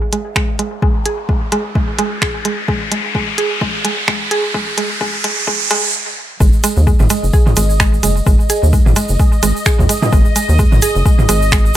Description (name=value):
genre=minimal techno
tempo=129 BPM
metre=4/4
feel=swing 57% on 16ths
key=unclear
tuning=A4 = 441 Hz
part: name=riser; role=sound effects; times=0.3-5.9 s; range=none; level=-20 LUFS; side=right 1 dB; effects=none
part: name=mallet-like synth pluck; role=riff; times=0.1-11.6 s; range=G#3 to G#4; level=-20 LUFS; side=right 1 dB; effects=chorus, sidechain pumping, dub echo
part: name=minimal click drum kit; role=drums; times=0.1-11.6 s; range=finger snaps, hi-hat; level=-17 LUFS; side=right 1 dB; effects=none
part: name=electronic kick drum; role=drums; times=0.4-11.6 s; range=none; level=-14 LUFS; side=equal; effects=none
part: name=rubbery square bass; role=bass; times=6.4-11.7 s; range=F#1 to D#2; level=-14 LUFS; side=equal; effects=sidechain pumping
part: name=tube shaker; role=percussion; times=6.4-11.8 s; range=none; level=-23 LUFS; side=right 3 dB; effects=none
part: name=bubbling stepped-filter texture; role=texture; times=6.4-11.8 s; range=D#5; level=-23 LUFS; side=left 1 dB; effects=chorus, built-in reverb, sidechain pumping
part: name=electronic toms and bongos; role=percussion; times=7.0-11.3 s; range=none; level=-18 LUFS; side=right 2 dB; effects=none
room=light reverb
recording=high-pass filter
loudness=-12 LUFS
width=side -12 dB against mid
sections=0.0-6.4 A section; 6.4-11.8 B section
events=build-up 0.0-6.4; filter sweep on synth arpeggio sound 0.0-6.4; filter sweep 0.0-6.4; riser 0.3-5.9; stop 5.9-6.4; drop 6.4-11.8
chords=0.0 N.C.; 6.4 G#5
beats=0.36 | 0.82 1.29 1.75 2.22 | 2.68 3.15 3.61 4.08 | 4.54 5.01 5.47 5.94 | 6.40 6.87 7.33 7.80 | 8.27 8.73 9.20 9.66 | 10.12 10.59 11.06 11.52